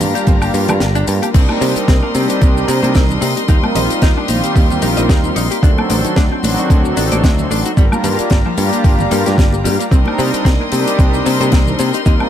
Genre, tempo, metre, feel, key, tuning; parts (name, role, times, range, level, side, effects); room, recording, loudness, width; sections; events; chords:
nu-disco, nu disco; 112 BPM; 4/4; swing 55% on 16ths; C minor; A4 = 440 Hz
warm analog pad; accompaniment; 0.0-12.3 s; Eb3 to Bb4; -18 LUFS; right 1 dB; chorus, analog delay
warm chamber violin section; sustained chords; 0.0-12.3 s; F#4 to Eb6; -24 LUFS; left 3 dB; sidechain pumping
picked electric bass; bass; 0.0-12.2 s; G1 to C3; -18 LUFS; equal
tight funk drum kit; drums; 0.0-12.3 s; crash cymbal, hi-hat, shaker, snare drum, woodblock; -22 LUFS; left 2 dB; analog delay
congas; percussion; 0.0-12.3 s; -26 LUFS; right 1 dB
direct-recorded clean electric guitar; riff; 0.2-12.1 s; D3 to Eb5; -24 LUFS; left 3 dB; wide subtle chorus, analog delay
electronic kick drum; drums; 0.3-12.2 s; -12 LUFS; equal; overdrive
soft round pluck; arpeggios; 1.3-12.2 s; A3 to D5; -25 LUFS; left 3 dB
light reverb, studio ambience; echo-heavy mix; -11 LUFS; side -10 dB against mid
0.0-1.3 A section; 1.3-12.3 B section
break 0.8-1.3; drop 1.3-12.3
0.0 Gm7; 1.3 Cm7; 3.5 Eb6; 5.6 D7b9; 7.8 Gm7; 9.9 Cm7